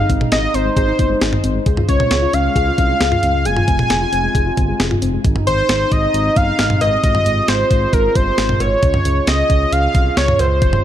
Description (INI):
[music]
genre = synth-pop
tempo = 134 BPM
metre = 4/4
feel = straight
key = Ab major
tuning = A4 = 440 Hz
[part]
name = wide unison lead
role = melody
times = 0.0-10.8 s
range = Bb4 to Ab5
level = -18 LUFS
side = equal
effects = ping-pong delay
[part]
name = mellow brass ensemble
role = sustained chords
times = 0.0-10.8 s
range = C3 to F4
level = -24 LUFS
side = right 3 dB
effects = none
[part]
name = soft round pluck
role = arpeggios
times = 0.0-5.2 s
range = Ab3 to Ab4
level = -24 LUFS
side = left 9 dB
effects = chorus, ping-pong delay
[part]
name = smooth synth bass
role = bass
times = 0.0-10.8 s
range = F1 to Db2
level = -20 LUFS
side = equal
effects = none
[part]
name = clean 12-bit digital drum machine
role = drums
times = 0.1-10.8 s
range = cowbell, hi-hat, kick drum, snare drum, toms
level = -18 LUFS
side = equal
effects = none
[sound]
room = light reverb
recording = dark, warm production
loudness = -13 LUFS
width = side -11 dB against mid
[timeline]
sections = 0.0-5.2 A section; 5.2-10.8 B section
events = none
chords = 0.0 Ab; 1.7 Db; 3.5 Fm; 5.2 Ab; 8.8 Db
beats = 0.32 0.77 1.22 | 1.66 2.11 2.56 3.01 | 3.45 3.90 4.35 4.80 | 5.25 5.69 6.14 6.59 | 7.04 7.48 7.93 8.38 | 8.83 9.28 9.72 10.17 | 10.62